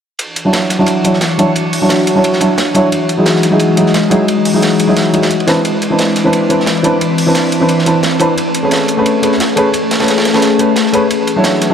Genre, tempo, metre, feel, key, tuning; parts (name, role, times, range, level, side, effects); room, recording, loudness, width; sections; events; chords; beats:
liquid drum and bass; 176 BPM; 4/4; swing 54% on 16ths; D lydian; A4 = 440 Hz
glassy FM pad; sustained chords; 0.5-11.7 s; E3 to D#5; -15 LUFS; left 2 dB; ensemble chorus, built-in reverb
crunchy breakbeat drum kit; drums; 0.2-11.7 s; hi-hat, ride cymbal, snare drum; -19 LUFS; right 2 dB; high-pass filter on cymbals, high-pass filter on hats, high-pass filter on snare, high-pass filter on room
electronic hi-hat; drums; 0.2-11.7 s; -23 LUFS; equal
felt-muted upright piano; accompaniment; 0.4-11.7 s; E3 to C#5; -13 LUFS; equal; low-pass filter, dub echo
wet echo chamber reverb, RT60 2.0 s; echo-heavy mix; -10 LUFS; side -8 dB against mid
0.2-11.7 A section
filter sweep on felt piano 0.2-11.7
0.2 Dmaj9; 2.9 Emaj9; 5.5 Cmaj9; 8.4 Amaj9; 11.1 Dmaj9
| 0.20 0.54 0.88 1.22 | 1.56 1.90 2.24 2.58 | 2.92 3.26 3.60 3.94 | 4.29 4.63 4.97 5.31 | 5.65 5.99 6.33 6.67 | 7.01 7.35 7.70 8.04 | 8.38 8.72 9.06 9.40 | 9.74 10.08 10.42 10.76 | 11.10 11.45